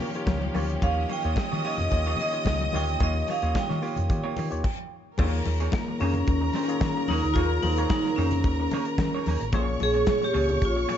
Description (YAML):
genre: disco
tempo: 110 BPM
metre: 4/4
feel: straight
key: unclear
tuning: A4 = 445 Hz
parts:
  - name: vibraphone with hard mallets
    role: melody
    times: 0.0-11.0 s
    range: Bb3 to G5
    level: -28 LUFS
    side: right 1 dB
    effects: slapback echo
  - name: rich studio violin section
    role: second line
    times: 0.0-11.0 s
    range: Bb4 to Eb6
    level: -33 LUFS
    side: right 1 dB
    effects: none
  - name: semi-hollow electric guitar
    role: accompaniment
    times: 0.0-11.0 s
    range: Bb3 to Db5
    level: -37 LUFS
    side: right 6 dB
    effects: none
  - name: tine electric piano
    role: accompaniment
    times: 0.0-11.0 s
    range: Bb2 to Db5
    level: -33 LUFS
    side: left 4 dB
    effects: auto-pan
  - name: clear studio string section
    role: sustained chords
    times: 0.0-4.6 s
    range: F3 to G4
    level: -38 LUFS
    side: right 1 dB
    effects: none
  - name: modern studio drum kit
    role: drums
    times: 0.0-11.0 s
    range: crash cymbal, hi-hat, kick drum, snare drum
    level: -29 LUFS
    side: equal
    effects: none
  - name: congas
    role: percussion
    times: 0.0-11.0 s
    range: none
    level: -36 LUFS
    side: left 5 dB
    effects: none
  - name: hollow-body short-scale fingered electric bass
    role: bass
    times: 0.3-10.8 s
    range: A1 to Eb3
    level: -28 LUFS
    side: equal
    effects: none
room: small room ambience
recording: nothing above 7.8 kHz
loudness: -23 LUFS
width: side -9 dB against mid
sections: 0.0-5.2 A section; 5.2-11.0 B section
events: stop 4.6-5.2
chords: 0.0 Eb9; 5.2 Eb7sus4; 9.5 Bbm7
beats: 0.27 | 0.82 1.37 1.91 2.46 | 3.00 3.55 4.09 4.64 | 5.18 5.73 6.27 6.81 | 7.36 7.90 8.44 8.99 | 9.53 10.07 10.62